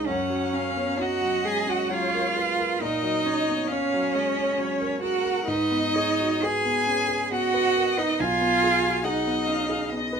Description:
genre	classical, slow romantic movement for piano quartet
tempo	66 BPM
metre	3/4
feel	uneven beats, rubato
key	F# major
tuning	A4 = 441 Hz
part	rich cello	second line	0.0-10.2 s	C#4 to G#4	-25 LUFS	right 5 dB	none
part	rich violin	second line	0.0-10.2 s	C#5 to G#5	-28 LUFS	left 4 dB	none
part	dark grand piano	accompaniment	0.0-10.2 s	B1 to B4	-30 LUFS	left 2 dB	none
part	rich violin	melody	0.1-10.2 s	A#4 to G#5	-31 LUFS	left 5 dB	none
room	moderate studio reverb, RT60 0.6 s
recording	minimal, uncompressed stereo recording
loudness	-22 LUFS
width	side -6 dB against mid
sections	0.1-10.2 A section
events	none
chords	0.1 F#; 2.8 F#/A#; 5.5 G#m; 8.2 G#m/B

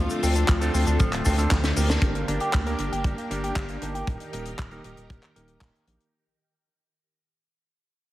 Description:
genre	italo disco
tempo	117 BPM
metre	4/4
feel	straight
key	G minor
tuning	A4 = 440 Hz
part	soft octave-layered synth lead	melody	0.0-1.5 s	F4	-32 LUFS	left 2 dB	chorus, phaser, tape echo
part	phased string machine	sustained chords	0.0-6.1 s	D3 to Bb4	-33 LUFS	equal	ensemble chorus, phaser
part	electric guitar with an envelope filter	arpeggios	0.0-4.1 s	F3 to G4	-32 LUFS	equal	spring reverb, tape echo
part	bright electric grand piano	stabs	0.0-6.1 s	Bb3 to Bb4	-33 LUFS	right 2 dB	low-pass filter
part	round analog bass	bass	0.0-6.0 s	D1 to D2	-26 LUFS	equal	none
part	tight funk drum kit	drums	0.1-6.1 s	cabasa, handclaps, hi-hat, snare drum	-30 LUFS	left 1 dB	none
part	kick drum	drums	0.5-5.7 s	none	-24 LUFS	equal	none
room	light reverb, small room ambience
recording	heavily compressed radio sound, vinyl crackle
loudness	-22 LUFS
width	side -16 dB against mid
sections	0.0-2.0 A section; 2.0-6.1 B section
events	drum fill 1.5-2.0; band accent 1.9; fade-out 2.0-6.1; filter sweep on electric grand piano 2.0-6.1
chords	0.0 Dm7; 2.0 Gm; 4.1 Eb

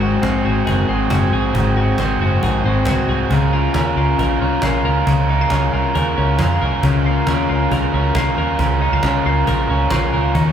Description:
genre	jangly indie pop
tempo	136 BPM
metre	4/4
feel	straight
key	unclear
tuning	A4 = 442 Hz
part	raw garage guitar	accompaniment	0.0-10.5 s	Ab2 to Bb4	-20 LUFS	right 3 dB	overdrive, tube saturation
part	twelve-string electric guitar	arpeggios	0.0-10.5 s	Ab2 to Bb4	-20 LUFS	left 5 dB	none
part	vintage muted fingered electric bass	bass	0.0-10.5 s	Gb1 to F2	-19 LUFS	right 1 dB	none
part	cajon	drums	0.2-10.5 s	none	-25 LUFS	right 1 dB	none
room	wet recital hall reverb, RT60 1.5 s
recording	recorded in a church or concert hall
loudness	-15 LUFS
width	side -9 dB against mid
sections	0.0-10.5 A section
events	none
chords	0.0 Ab7; 3.3 Bbm7

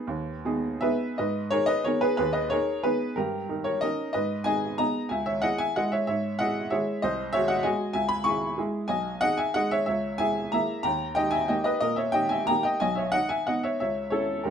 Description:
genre	classical, piano waltz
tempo	161-203 BPM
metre	3/4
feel	rubato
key	G# minor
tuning	A4 = 440 Hz
part	clear upright piano	solo	0.0-14.5 s	B1 to C#6	-24 LUFS	equal	none
room	moderate large studio reverb, RT60 0.8 s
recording	close, detailed microphones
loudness	-24 LUFS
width	side -8 dB against mid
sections	0.0-1.2 A section; 1.2-14.5 B section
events	none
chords	0.0 G#m; 3.2 D#7/G; 4.1 G#m; 5.1 C#m; 7.0 G#7/B#; 7.9 C#m; 8.9 G#m/B; 9.9 A#m7b5/C#; 10.8 D#; 12.8 B69; 13.8 A/C#

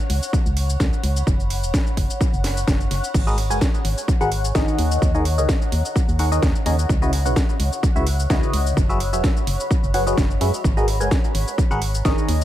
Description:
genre	piano house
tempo	128 BPM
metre	4/4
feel	swing 54% on 16ths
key	G# minor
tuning	A4 = 438 Hz
part	granular cloud pad	texture	0.0-12.4 s	C#5 to B5	-31 LUFS	left 1 dB	built-in reverb, sidechain pumping
part	organ-like FM bass	bass	0.1-12.4 s	E1 to F#2	-22 LUFS	equal	sidechain pumping
part	house drum kit	drums	0.1-12.4 s	crash cymbal, hi-hat, shaker, snare drum	-27 LUFS	equal	overdrive, tape echo
part	electronic kick drum	drums	0.3-12.2 s	none	-20 LUFS	equal	overdrive
part	barking FM electric piano	riff	3.3-12.4 s	C#3 to G#5	-24 LUFS	left 1 dB	phaser, sidechain pumping, tape echo
room	light reverb, digital ambience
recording	echo-heavy mix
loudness	-18 LUFS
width	side -13 dB against mid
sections	0.0-12.4 A section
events	fade-in on ambient pad 0.0-12.4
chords	0.0 C#7sus4; 1.3 F#sus4; 3.1 G#m9; 4.8 D#7sus4; 6.9 C#m11; 8.8 F#9sus4; 10.6 G#m9

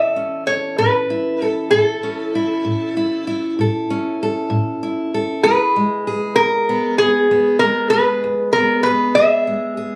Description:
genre	acoustic country blues, solo or duo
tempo	64 BPM (dotted quarters)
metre	12/8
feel	straight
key	unclear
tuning	A4 = 440 Hz
part	lap resonator guitar	melody	0.0-10.0 s	G#4 to E5	-18 LUFS	equal	none
part	fingerpicked steel-string acoustic guitar	accompaniment	0.0-10.0 s	E2 to A4	-23 LUFS	equal	none
room	moderate studio ambience, RT60 0.5 s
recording	recorded on a phone in the room, club reverb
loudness	-18 LUFS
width	mono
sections	0.0-10.0 A section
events	none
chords	0.0 A; 5.4 E

